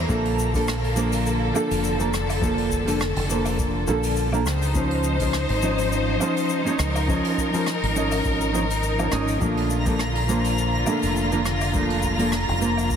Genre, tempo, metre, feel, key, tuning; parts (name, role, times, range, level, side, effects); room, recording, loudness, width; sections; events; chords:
sunset chillout; 103 BPM; 4/4; swing 55% on 16ths; A4 = 440 Hz
warm symphonic string section; sustained chords; 0.0-13.0 s; Bb2 to C5; -27 LUFS; left 2 dB; shimmer reverb
deep dub fingered electric bass; bass; 0.0-13.0 s; F1 to Db2; -26 LUFS; equal
twinkling granular texture; texture; 0.0-0.1, 9.6-13.0 s; Bb5; -31 LUFS; equal; built-in reverb, shimmer reverb
nylon-string guitar; accompaniment; 0.1-13.0 s; F3 to Eb5; -24 LUFS; right 1 dB; auto-pan, digital delay, shimmer reverb
electronic kick drum; drums; 0.1-13.0 s; -28 LUFS; equal
jazz brush drum kit; drums; 0.1-13.0 s; hi-hat, rim click, shaker, woodblock; -32 LUFS; left 1 dB
moderate concert hall reverb, RT60 2.5 s; heavily compressed radio sound, multiband compression; -20 LUFS; side -8 dB against mid
0.1-13.0 A section
0.1 Bbmaj7; 4.5 Dbmaj9; 9.4 Bbmaj7